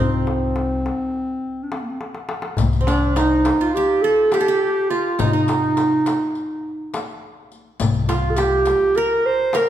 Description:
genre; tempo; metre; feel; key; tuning
Turkish makam ensemble; 207 BPM (eighths); 9/8; straight; C makam huseyni; A4 = 439 Hz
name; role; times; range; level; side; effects
dark clarinet; melody; 0.0-9.7 s; Bb3 to C5; -19 LUFS; right 1 dB; none
qanun; second line; 0.0-9.7 s; C4 to Bb4; -24 LUFS; right 4 dB; none
upright bass; bass; 0.0-8.7 s; C2 to C3; -24 LUFS; left 1 dB; none
darbuka; percussion; 0.1-9.7 s; none; -26 LUFS; left 3 dB; none
riq; percussion; 2.6-9.7 s; none; -31 LUFS; left 5 dB; none
room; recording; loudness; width
moderate recital hall reverb, RT60 1.7 s; recorded in a church or concert hall; -17 LUFS; side -11 dB against mid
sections
0.0-2.6 A section; 2.6-9.7 B section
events
drum fill 2.0-2.6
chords
none

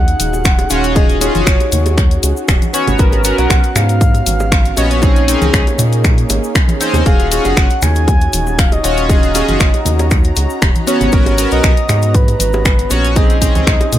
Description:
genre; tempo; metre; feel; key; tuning
deep house; 118 BPM; 4/4; swing 54% on 16ths; Eb minor; A4 = 440 Hz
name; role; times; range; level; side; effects
breathy flute-like synth lead; melody; 0.0-14.0 s; Cb5 to Ab5; -21 LUFS; equal; chorus, dub echo
warm analog pad; sustained chords; 0.0-14.0 s; Bb3 to Bb5; -23 LUFS; right 1 dB; chorus, vintage 12-bit sampler grit, sidechain pumping
round analog bass; bass; 0.0-14.0 s; Eb1 to Bb2; -16 LUFS; equal; sidechain pumping
house drum kit; drums; 0.1-14.0 s; finger snaps, hi-hat; -19 LUFS; left 1 dB; none
cabasa; percussion; 0.1-14.0 s; none; -26 LUFS; left 4 dB; none
congas and bongos; percussion; 0.2-14.0 s; none; -24 LUFS; right 2 dB; none
electronic kick drum; drums; 0.5-13.8 s; none; -12 LUFS; equal; none
chorused polysynth; stabs; 0.7-13.8 s; Cb4 to Db5; -18 LUFS; equal; cassette tape, sidechain pumping, ping-pong delay
room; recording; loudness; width
little or no reverb; none; -10 LUFS; side -12 dB against mid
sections
0.0-14.0 A section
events
none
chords
0.0 Ebm11; 2.7 Abm11; 5.0 Bbm11; 7.1 Ebm11; 10.9 Abm11; 13.2 Bbm11

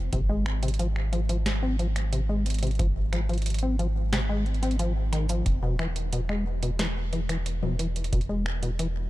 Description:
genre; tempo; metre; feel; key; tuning
IDM; 90 BPM; 4/4; straight; unclear; A4 = 440 Hz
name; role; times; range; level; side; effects
round analog bass; bass; 0.0-9.1 s; E1 to Ab1; -27 LUFS; equal; none
deep acid bass; arpeggios; 0.1-8.9 s; B2 to C4; -31 LUFS; left 2 dB; cassette tape, digital delay
booming analog drum machine; drums; 0.1-8.9 s; finger snaps, hi-hat, shaker, snare drum, toms; -34 LUFS; right 1 dB; none
electronic kick drum; drums; 0.1-8.3 s; none; -28 LUFS; equal; none
room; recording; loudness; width
little or no reverb; dark, warm production; -25 LUFS; side -17 dB against mid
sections
0.0-9.1 A section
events
none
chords
0.1 Ab; 5.5 E5

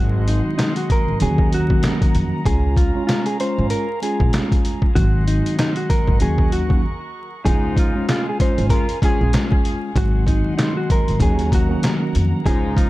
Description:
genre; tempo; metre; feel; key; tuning
hip hop, boom-bap hip-hop; 96 BPM; 4/4; swing 58% on 16ths; Db major; A4 = 440 Hz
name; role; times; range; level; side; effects
mellow electric guitar; melody; 0.0-12.9 s; Eb4 to C5; -25 LUFS; equal; high-pass filter, low-pass filter, digital delay
mellow tine electric piano; accompaniment; 0.0-12.9 s; Eb3 to Gb4; -23 LUFS; equal; medium stereo tremolo, high-pass filter, low-pass filter
warm studio string section; sustained chords; 0.0-12.9 s; Db4 to Db6; -34 LUFS; left 1 dB; high-pass filter, low-pass filter
upright bass; bass; 0.0-12.9 s; Ab1 to F2; -20 LUFS; equal; none
trip hop sampler-style drum kit; drums; 0.3-12.9 s; handclaps, hi-hat, kick drum, snare drum; -19 LUFS; equal; none
mellow horn section; stabs; 7.5-12.9 s; Ab2 to Ab4; -29 LUFS; left 2 dB; high-pass filter, low-pass filter, digital delay
room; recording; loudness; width
little or no reverb; dark, warm production, vinyl crackle; -16 LUFS; side -18 dB against mid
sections
0.0-7.5 A section; 7.5-12.9 B section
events
break 6.8-7.5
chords
0.0 Ab7; 1.2 Ebm7; 2.5 Db; 5.0 Ab7; 6.2 Ebm7; 7.5 Db; 10.0 Ab7; 11.2 Ebm7

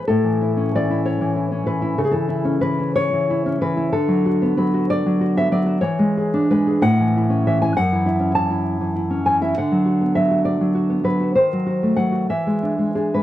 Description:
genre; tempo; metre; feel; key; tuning
romantic piece for solo classical guitar; 56-68 BPM (dotted quarters); 6/8; rubato; A major; A4 = 443 Hz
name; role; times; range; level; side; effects
nylon-string guitar; solo; 0.0-13.2 s; F#2 to A5; -17 LUFS; equal; none
room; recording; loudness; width
light reverb; vinyl crackle; -17 LUFS; side -13 dB against mid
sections
0.1-13.2 A section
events
none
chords
0.1 A; 2.0 C#m7; 3.9 Bm7/D; 5.8 E7; 6.8 A; 7.7 F#m7; 9.5 Bm/D; 11.3 D#dim7; 12.3 E7

